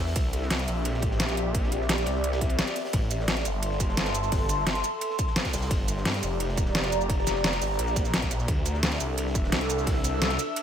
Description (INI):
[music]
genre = dark technical drum and bass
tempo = 173 BPM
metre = 4/4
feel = straight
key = A phrygian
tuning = A4 = 440 Hz
[part]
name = snarling distorted saw bass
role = bass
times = 0.0-10.4 s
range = F1 to G2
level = -29 LUFS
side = equal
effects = distortion, overdrive
[part]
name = airy breathy pad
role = texture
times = 0.0-10.6 s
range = C4 to E6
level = -30 LUFS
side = equal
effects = chorus, sidechain pumping
[part]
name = crunchy breakbeat drum kit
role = drums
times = 0.1-10.6 s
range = hi-hat, ride cymbal, snare drum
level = -39 LUFS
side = equal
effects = high-pass filter on cymbals, high-pass filter on hats, high-pass filter on snare, high-pass filter on room
[part]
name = dubstep drum kit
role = drums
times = 0.2-10.6 s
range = hi-hat, shaker, snare drum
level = -28 LUFS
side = equal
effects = none
[part]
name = electronic kick drum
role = drums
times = 0.2-9.9 s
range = none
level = -28 LUFS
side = equal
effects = none
[sound]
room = light reverb, small room ambience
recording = none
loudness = -24 LUFS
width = side -9 dB against mid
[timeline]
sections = 0.0-10.6 A section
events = none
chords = 0.2 C; 2.9 Am; 5.7 Gm; 8.5 Dsus2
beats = | 0.16 0.51 0.85 1.20 | 1.55 1.89 2.24 2.59 | 2.93 3.28 3.63 3.98 | 4.32 4.67 5.01 5.36 | 5.71 6.06 6.40 6.75 | 7.10 7.44 7.79 8.14 | 8.48 8.83 9.18 9.52 | 9.87 10.22 10.56